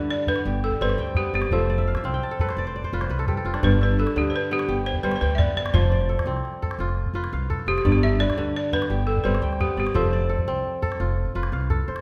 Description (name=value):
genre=west african traditional, West African string and xylophone music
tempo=114 BPM (dotted quarters)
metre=12/8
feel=straight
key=G mixolydian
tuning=A4 = 441 Hz
part: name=balafon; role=melody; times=0.0-11.0 s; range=G4 to E5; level=-28 LUFS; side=equal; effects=none
part: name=kora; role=arpeggios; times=0.0-12.0 s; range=G2 to A5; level=-29 LUFS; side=equal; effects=none
part: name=upright bass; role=bass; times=0.0-12.0 s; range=F1 to D2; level=-28 LUFS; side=equal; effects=none
part: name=calabash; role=percussion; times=0.3-12.0 s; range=none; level=-30 LUFS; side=equal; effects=none
room=wet recital hall reverb, RT60 1.5 s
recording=none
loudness=-24 LUFS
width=mono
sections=0.0-12.0 A section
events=kora fill 1.7-3.6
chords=0.0 G; 1.5 F; 3.6 G; 5.7 F; 7.8 G; 10.0 F